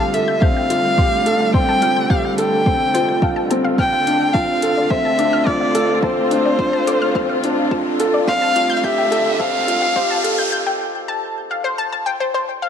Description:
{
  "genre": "piano and strings electronica",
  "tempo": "107 BPM",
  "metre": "4/4",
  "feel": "straight",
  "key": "unclear",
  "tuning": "A4 = 441 Hz",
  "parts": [
    { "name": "rich violin", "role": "melody", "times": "0.0-10.5 s", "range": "C5 to G5", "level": "-19 LUFS", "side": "left 1 dB", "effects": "ping-pong delay" },
    { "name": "warm symphonic string section", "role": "sustained chords", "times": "0.0-10.5 s", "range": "D2 to F4", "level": "-24 LUFS", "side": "right 1 dB", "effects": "sidechain pumping" },
    { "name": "analog pluck", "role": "arpeggios", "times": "0.0-12.7 s", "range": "C5 to G6", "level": "-25 LUFS", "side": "left 3 dB", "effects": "chorus, sidechain pumping, ping-pong delay" },
    { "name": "felt-muted upright piano", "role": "riff", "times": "0.0-12.7 s", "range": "C4 to F5", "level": "-20 LUFS", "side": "equal", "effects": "ping-pong delay" },
    { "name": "electronic hi-hat", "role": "drums", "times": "0.1-10.4 s", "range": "none", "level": "-29 LUFS", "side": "equal", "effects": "none" },
    { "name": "electronic kick drum", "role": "drums", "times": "0.4-10.1 s", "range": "none", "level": "-19 LUFS", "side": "equal", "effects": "none" },
    { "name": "riser", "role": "sound effects", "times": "6.6-10.5 s", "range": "none", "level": "-28 LUFS", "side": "right 1 dB", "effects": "none" }
  ],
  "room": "moderate lush hall reverb, RT60 1.9 s, small room ambience",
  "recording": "dark, warm production, high-pass filter",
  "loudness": "-15 LUFS",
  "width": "side -8 dB against mid",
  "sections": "0.0-12.7 A section",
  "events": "build-up 0.0-12.7; filter sweep on synth arpeggio sound 0.0-12.7; filter sweep 0.0-12.7; riser 6.6-10.5; break 10.5-12.7",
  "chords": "0.0 Fadd9/D; 3.8 Dm7; 8.3 Fadd9/D"
}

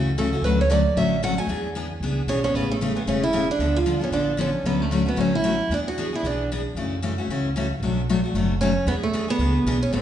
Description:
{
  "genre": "acoustic string swing (jazz manouche)",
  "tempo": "228 BPM",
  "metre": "4/4",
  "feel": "swing 58% on 8ths",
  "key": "unclear",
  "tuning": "A4 = 436 Hz",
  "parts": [
    { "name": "picked steel-string acoustic guitar", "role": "accompaniment", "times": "0.0-10.0 s", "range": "B2 to A4", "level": "-24 LUFS", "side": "left 3 dB", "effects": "none" },
    { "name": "upright bass", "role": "bass", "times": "0.0-10.0 s", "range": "E1 to F#2", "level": "-27 LUFS", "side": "equal", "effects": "none" },
    { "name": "picked steel-string acoustic guitar", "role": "melody", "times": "0.2-6.5, 8.6-10.0 s", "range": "A3 to G#5", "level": "-24 LUFS", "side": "right 3 dB", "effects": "none" }
  ],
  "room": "wet recital hall reverb, RT60 1.4 s",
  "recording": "recorded in a church or concert hall, nothing above 10.3 kHz",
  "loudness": "-20 LUFS",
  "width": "side -10 dB against mid",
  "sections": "0.0-2.5 A section; 2.5-10.0 B section",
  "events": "none",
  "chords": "0.4 Dmaj7; 1.5 E6; 2.5 Amaj7; 3.6 Dm6; 4.6 Dmaj7; 5.7 E7; 6.8 F#m7; 7.8 Bm7; 8.9 E7"
}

